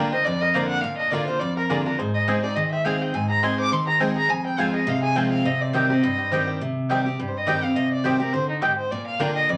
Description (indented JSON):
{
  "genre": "bluegrass",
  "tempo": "208 BPM",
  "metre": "4/4",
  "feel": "swing 55% on 8ths",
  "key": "C minor",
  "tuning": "A4 = 439 Hz",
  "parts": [
    { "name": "bluegrass banjo", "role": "melody", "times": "0.0-9.3 s", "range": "Ab3 to C5", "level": "-35 LUFS", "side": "equal", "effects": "none" },
    { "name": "dark fiddle", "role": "melody", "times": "0.0-9.6 s", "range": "Eb4 to D6", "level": "-27 LUFS", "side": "equal", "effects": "none" },
    { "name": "picked steel-string acoustic guitar", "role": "accompaniment", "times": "0.0-9.6 s", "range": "F2 to Ab4", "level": "-26 LUFS", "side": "equal", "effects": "none" },
    { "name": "mandolin", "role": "stabs", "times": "0.0-9.3 s", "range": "Bb3 to Bb5", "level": "-30 LUFS", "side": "equal", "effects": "none" }
  ],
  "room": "wet club reverb, RT60 0.7 s",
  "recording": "none",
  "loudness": "-23 LUFS",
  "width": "mono",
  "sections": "0.0-6.6 A section; 6.6-9.6 A section",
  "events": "none",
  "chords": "0.0 Bb; 2.0 Ab; 4.3 Fm; 5.5 Cm; 8.9 Bb",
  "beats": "0.26 0.55 | 0.84 1.12 1.41 1.70 | 1.99 2.28 2.57 2.86 | 3.15 3.43 3.72 4.01 | 4.30 4.59 4.88 5.17 | 5.45 5.74 6.03 6.32 | 6.61 6.90 7.18 7.47 | 7.76 8.05 8.34 8.63 | 8.91 9.20 9.49"
}